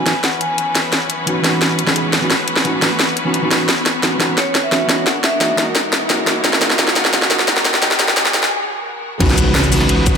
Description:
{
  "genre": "liquid drum and bass",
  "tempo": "174 BPM",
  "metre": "4/4",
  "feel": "straight",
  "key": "C# dorian",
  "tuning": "A4 = 440 Hz",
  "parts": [
    { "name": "vibraphone with medium hard mallets", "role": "melody", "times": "0.0-0.8, 4.4-5.6 s", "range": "C#5 to G#5", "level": "-23 LUFS", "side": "equal", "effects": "vintage 12-bit sampler grit, ping-pong delay" },
    { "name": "hollow-body jazz guitar", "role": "accompaniment", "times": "0.0-10.2 s", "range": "E3 to G#4", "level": "-21 LUFS", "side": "right 1 dB", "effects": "low-pass filter, ping-pong delay" },
    { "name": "clear studio string section", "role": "sustained chords", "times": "0.0-10.2 s", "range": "E3 to B4", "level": "-22 LUFS", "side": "left 1 dB", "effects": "sidechain pumping" },
    { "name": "riser and impact", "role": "sound effects", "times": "2.1-10.2 s", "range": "none", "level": "-24 LUFS", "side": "equal", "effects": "none" },
    { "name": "garage drum kit", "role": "drums", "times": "0.1-10.2 s", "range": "crash cymbal, hi-hat, shaker, snare drum", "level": "-16 LUFS", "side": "equal", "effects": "none" },
    { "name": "dark detuned saw bass", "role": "bass", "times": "9.2-10.2 s", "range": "C#2", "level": "-18 LUFS", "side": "equal", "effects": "none" },
    { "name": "crunchy breakbeat drum kit", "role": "drums", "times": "9.2-10.1 s", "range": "hi-hat, ride cymbal, snare drum", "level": "-24 LUFS", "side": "equal", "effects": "high-pass filter on cymbals, high-pass filter on hats, high-pass filter on snare, high-pass filter on room" },
    { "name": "electronic kick drum", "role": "drums", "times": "9.2-10.1 s", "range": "none", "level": "-16 LUFS", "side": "equal", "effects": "none" }
  ],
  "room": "moderate lush hall reverb, RT60 1.7 s, studio ambience",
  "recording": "high-pass filter",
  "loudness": "-13 LUFS",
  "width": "side -6 dB against mid",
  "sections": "0.0-9.2 A section",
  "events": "build-up 0.0-9.2; drum fill 0.0-8.5; filter sweep on hollow-body jazz guitar 0.0-9.2; riser 2.1-8.5; break 8.5-9.2; impact 9.2-10.2",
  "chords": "0.0 C#m11; 5.1 F#13; 9.2 C#m11"
}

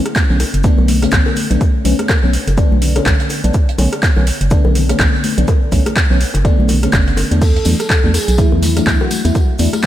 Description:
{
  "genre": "deep house",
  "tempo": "124 BPM",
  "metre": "4/4",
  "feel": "swing 58% on 16ths",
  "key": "B minor",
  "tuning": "A4 = 440 Hz",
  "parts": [
    { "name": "mellow FM electric piano", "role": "stabs", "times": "0.0-9.7 s", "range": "D3 to E4", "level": "-19 LUFS", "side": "left 1 dB", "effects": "chorus, phaser, sidechain pumping, tape echo" },
    { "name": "deep house drum kit", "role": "drums", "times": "0.1-9.9 s", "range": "crash cymbal, handclaps, hi-hat, rim click", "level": "-20 LUFS", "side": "equal", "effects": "overdrive, studio reverb" },
    { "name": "deep reggae drum kit", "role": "drums", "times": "0.2-9.9 s", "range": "hi-hat, shaker, snare drum", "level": "-33 LUFS", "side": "right 2 dB", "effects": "none" },
    { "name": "electronic kick drum", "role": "drums", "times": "0.2-9.9 s", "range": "none", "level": "-14 LUFS", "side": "equal", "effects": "overdrive, studio reverb" },
    { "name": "organ-like FM bass", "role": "bass", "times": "0.3-9.7 s", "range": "F#1 to E2", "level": "-15 LUFS", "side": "equal", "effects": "sidechain pumping" },
    { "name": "bongos and congas", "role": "percussion", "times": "0.4-9.9 s", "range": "none", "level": "-25 LUFS", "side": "left 4 dB", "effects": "none" },
    { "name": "warm velvety synth lead", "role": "melody", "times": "7.4-9.9 s", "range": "E4 to A4", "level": "-22 LUFS", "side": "right 3 dB", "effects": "chorus, diffuse ambient delay" },
    { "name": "tambourine", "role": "percussion", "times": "7.4-9.9 s", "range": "none", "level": "-27 LUFS", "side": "left 2 dB", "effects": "none" }
  ],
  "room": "light reverb, small room ambience",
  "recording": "none",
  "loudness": "-11 LUFS",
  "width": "side -12 dB against mid",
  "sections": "0.0-9.9 A section",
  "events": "none",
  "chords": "0.0 Bm9; 7.4 E9sus4"
}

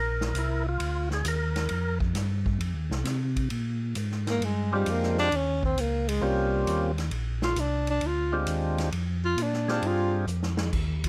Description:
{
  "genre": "soul jazz organ trio",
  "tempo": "133 BPM",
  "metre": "4/4",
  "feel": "swing 68% on 8ths",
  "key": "Bb mixolydian",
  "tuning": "A4 = 441 Hz",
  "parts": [
    { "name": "percussive tonewheel organ", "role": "melody", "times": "0.0-2.0, 4.7-10.3 s", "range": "Ab3 to Bb4", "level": "-32 LUFS", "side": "equal", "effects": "slow rotary speaker" },
    { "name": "mellow tonewheel organ", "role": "bass", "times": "0.0-11.1 s", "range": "Bb1 to C3", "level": "-31 LUFS", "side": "equal", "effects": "chorus vibrato, slow rotary speaker" },
    { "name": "swinging big-band drum kit", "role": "drums", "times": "0.2-11.1 s", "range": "crash cymbal, hi-hat, kick drum, ride cymbal, snare drum", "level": "-37 LUFS", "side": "equal", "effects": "none" },
    { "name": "warm tenor saxophone", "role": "melody", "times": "4.3-10.2 s", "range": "G3 to F4", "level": "-30 LUFS", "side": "equal", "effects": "none" }
  ],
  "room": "little or no reverb",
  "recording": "close, detailed microphones",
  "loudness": "-28 LUFS",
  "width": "mono",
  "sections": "0.0-3.5 A section; 3.5-11.1 A section",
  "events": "tonewheel organ solo 0.0-3.5; tenor saxophone solo 3.5-11.1; drum fill 10.3-10.7",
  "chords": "0.0 Bb69; 2.6 F5; 3.5 Bb13; 5.3 Eb13; 7.1 Bb13"
}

